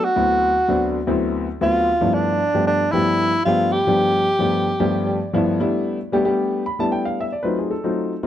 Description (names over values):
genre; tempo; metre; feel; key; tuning
jazz; 227 BPM (eighths); 7/8; straight; G mixolydian; A4 = 440 Hz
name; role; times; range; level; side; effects
warm tenor saxophone; melody; 0.0-5.3 s; D4 to G4; -19 LUFS; right 1 dB; none
warm grand piano; accompaniment; 0.0-8.3 s; D2 to B5; -20 LUFS; left 1 dB; none
room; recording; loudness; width
light reverb; dark, warm production; -17 LUFS; side -11 dB against mid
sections
0.0-5.6 A section; 5.6-8.3 B section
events
grand piano fill 4.8-5.6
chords
0.0 D13; 1.9 G13; 7.4 F7b9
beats
| 0.04 0.30 0.57 0.83 1.10 1.36 1.63 | 1.89 2.15 2.42 2.68 2.95 3.21 3.48 | 3.74 4.01 4.27 4.53 4.80 5.06 5.33 | 5.59 5.86 6.12 6.38 6.65 6.91 7.18 | 7.44 7.71 7.97 8.23